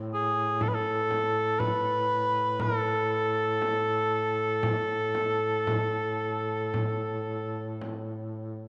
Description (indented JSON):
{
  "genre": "caucasian folk, Caucasian lament",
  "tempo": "56-61 BPM",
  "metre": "4/4",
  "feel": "rubato",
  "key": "unclear",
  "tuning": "A4 = 440 Hz",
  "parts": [
    { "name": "warm duduk", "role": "drone", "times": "0.0-8.7 s", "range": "A2", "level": "-37 LUFS", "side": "equal", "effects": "none" },
    { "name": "mellow cor anglais", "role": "melody", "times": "0.1-7.8 s", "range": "G#4 to B4", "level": "-29 LUFS", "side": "equal", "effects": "none" },
    { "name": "frame drum", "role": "percussion", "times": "0.6-8.1 s", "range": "none", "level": "-37 LUFS", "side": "equal", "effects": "none" }
  ],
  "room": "wet plate reverb, RT60 2.8 s",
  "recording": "nothing above 11.0 kHz",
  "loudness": "-28 LUFS",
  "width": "mono",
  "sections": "0.0-8.7 A section",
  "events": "none",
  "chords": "none",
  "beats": "| 0.61 1.59 2.60 3.62 | 4.63 5.67 6.73 7.80"
}